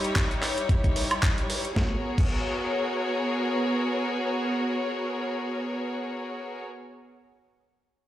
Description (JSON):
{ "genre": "nu-disco, nu disco", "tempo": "112 BPM", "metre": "4/4", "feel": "swing 56% on 16ths", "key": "G# minor", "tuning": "A4 = 440 Hz", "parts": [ { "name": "rich studio string section", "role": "sustained chords", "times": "0.0-6.6 s", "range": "G3 to C#5", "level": "-27 LUFS", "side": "equal", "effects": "sidechain pumping" }, { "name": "dusty soul sampler-style drum kit", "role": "drums", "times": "0.0-2.3 s", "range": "crash cymbal, handclaps, hi-hat, snare drum, woodblock", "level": "-30 LUFS", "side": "right 1 dB", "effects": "overdrive" }, { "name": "electronic kick drum", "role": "drums", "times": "0.2-2.3 s", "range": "none", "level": "-24 LUFS", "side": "equal", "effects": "overdrive" } ], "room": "light reverb, digital ambience", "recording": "played on a big sound system in a bare room, large studio reverb", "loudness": "-25 LUFS", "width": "side -13 dB against mid", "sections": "0.0-1.8 A section; 1.8-6.1 B section", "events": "none", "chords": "0.0 D#7b9; 1.8 G#m11" }